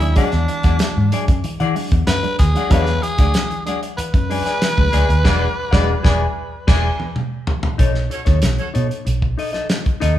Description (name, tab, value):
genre	funk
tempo	94 BPM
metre	4/4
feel	straight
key	unclear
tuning	A4 = 435 Hz
part	growling tenor saxophone	melody	0.0-7.1 s	D4 to B4	-23 LUFS	equal	none
part	semi-hollow electric guitar	accompaniment	0.0-10.2 s	D#4 to G#5	-25 LUFS	left 5 dB	spring reverb
part	reed electric piano	stabs	0.0-5.9 s	E3 to D4	-26 LUFS	right 1 dB	fast tremolo
part	vintage muted fingered electric bass	bass	0.0-10.2 s	E1 to E3	-19 LUFS	equal	none
part	warm soul drum kit	drums	0.0-10.2 s	crash cymbal, hi-hat, kick drum, snare drum, toms	-19 LUFS	equal	none
part	mellow horn section	second line	5.3-8.7 s	F#4 to D5	-29 LUFS	right 2 dB	none
room	moderate large studio reverb, RT60 1.2 s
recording	band playing live in one room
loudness	-15 LUFS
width	side -12 dB against mid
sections	0.0-7.8 A section; 7.8-10.2 B section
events	band accent 5.2-7.8; drum fill 6.5-7.8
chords	0.0 E9; 7.8 B9